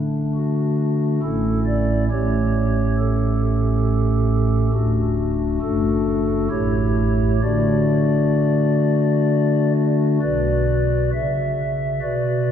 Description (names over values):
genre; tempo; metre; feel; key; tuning
classical, chorale-style piece for pipe organ; 64-69 BPM; 3/4; rubato; D major; A4 = 440 Hz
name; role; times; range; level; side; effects
pipe organ, stopped flute; solo; 0.0-12.5 s; D1 to E5; -17 LUFS; equal; none
room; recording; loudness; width
wet church reverb, RT60 3.3 s; heard from further back in the room; -17 LUFS; side -9 dB against mid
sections
0.0-10.2 A section; 10.2-12.5 B section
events
none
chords
0.0 D; 1.2 A; 2.1 A7; 4.7 D; 5.6 D/F#; 6.5 A7; 7.4 D; 10.2 Bm